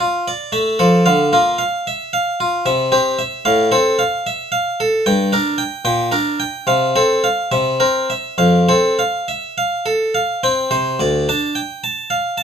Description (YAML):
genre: classical, baroque-style suite movement for harpsichord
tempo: 68-76 BPM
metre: 3/4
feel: rubato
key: F major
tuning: A4 = 440 Hz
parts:
  - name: harpsichord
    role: solo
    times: 0.0-12.4 s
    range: D2 to A5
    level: -14 LUFS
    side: equal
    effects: none
room: light reverb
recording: close, detailed microphones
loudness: -14 LUFS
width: side -8 dB against mid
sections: 0.0-11.0 A section; 11.0-12.4 A section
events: none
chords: 0.0 Dm/F; 1.1 Bb/D; 2.7 C; 3.5 F/A; 5.1 Gm; 5.9 Gm/Bb; 6.7 F/C; 7.5 C7; 8.4 F; 11.0 Dm